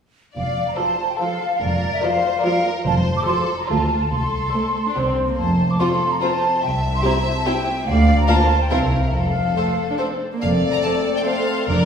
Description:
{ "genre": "cinematic, playful, whimsical film cue", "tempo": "143 BPM", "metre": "3/4", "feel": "straight", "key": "F major", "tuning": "A4 = 440 Hz", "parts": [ { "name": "clear studio violin section", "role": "melody", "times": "0.4-11.9 s", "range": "F4 to Bb5", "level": "-28 LUFS", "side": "left 4 dB", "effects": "none" }, { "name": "bright large flute ensemble", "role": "second line", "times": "0.4-10.0 s", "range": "D5 to D6", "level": "-22 LUFS", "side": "equal", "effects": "none" }, { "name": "dark studio cello section", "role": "bass", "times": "0.4-11.9 s", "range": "C2 to F2", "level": "-24 LUFS", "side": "right 1 dB", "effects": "none" }, { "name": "rich studio double bass section", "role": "bass", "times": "0.4-11.9 s", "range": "F1 to D2", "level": "-23 LUFS", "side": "right 1 dB", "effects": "none" }, { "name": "rich studio violin section", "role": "second line", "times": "0.8-11.9 s", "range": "F4 to F5", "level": "-26 LUFS", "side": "left 2 dB", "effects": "none" }, { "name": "rich studio viola section", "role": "accompaniment", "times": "0.8-11.6 s", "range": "F3 to A4", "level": "-26 LUFS", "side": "equal", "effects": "none" }, { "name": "warm clarinet", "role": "second line", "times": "10.4-11.9 s", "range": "C4 to D4", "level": "-28 LUFS", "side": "left 4 dB", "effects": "none" }, { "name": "warm cor anglais", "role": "second line", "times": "10.4-11.9 s", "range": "A4 to Bb4", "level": "-26 LUFS", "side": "right 1 dB", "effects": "none" }, { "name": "warm French horn section", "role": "sustained chords", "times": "10.4-11.9 s", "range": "A3 to D4", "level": "-26 LUFS", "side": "left 3 dB", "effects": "none" } ], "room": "wet recital hall reverb, RT60 1.5 s", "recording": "recorded in a church or concert hall", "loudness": "-17 LUFS", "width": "side -7 dB against mid", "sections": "0.4-10.4 A section; 10.4-11.9 A section", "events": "none", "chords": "0.4 F; 3.7 Dm7; 4.1 Amadd11/C; 5.0 C5; 5.4 F; 6.6 C; 7.9 Bb/D; 8.7 C7(no3); 9.1 F" }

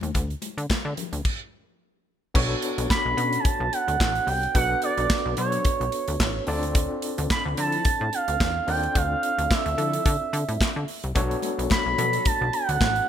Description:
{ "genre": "early-eighties boogie funk", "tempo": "109 BPM", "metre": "4/4", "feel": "swing 56% on 16ths", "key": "B minor", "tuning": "A4 = 440 Hz", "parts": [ { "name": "plucky analog bass", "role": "bass", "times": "0.0-13.0 s", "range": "A1 to D3", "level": "-28 LUFS", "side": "equal", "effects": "none" }, { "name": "modern studio drum kit", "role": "drums", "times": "0.0-13.1 s", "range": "crash cymbal, handclaps, hi-hat, kick drum, snare drum", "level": "-26 LUFS", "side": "equal", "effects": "none" }, { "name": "congas", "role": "percussion", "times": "0.0-1.1, 11.2-12.9 s", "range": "none", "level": "-36 LUFS", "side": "left 11 dB", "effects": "none" }, { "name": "overdriven tine electric piano", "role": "accompaniment", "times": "2.3-13.1 s", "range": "B3 to D5", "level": "-31 LUFS", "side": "left 2 dB", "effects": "fast tremolo" }, { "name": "expressive portamento lead", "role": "melody", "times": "2.9-13.1 s", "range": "C#5 to B5", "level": "-25 LUFS", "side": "right 3 dB", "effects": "chorus, ping-pong delay" }, { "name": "mellow synth brass", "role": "second line", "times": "3.2-12.2 s", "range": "D3 to A4", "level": "-34 LUFS", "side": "left 2 dB", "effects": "chorus" } ], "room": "moderate plate reverb, RT60 1.7 s, small room ambience", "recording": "bright 1980s-style digital production", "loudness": "-22 LUFS", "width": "side -9 dB against mid", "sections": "0.0-2.3 A section; 2.3-13.1 B section", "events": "stop 1.2-2.3", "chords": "0.0 N.C.; 2.3 Bm9; 6.5 Dm9; 11.2 Bm9" }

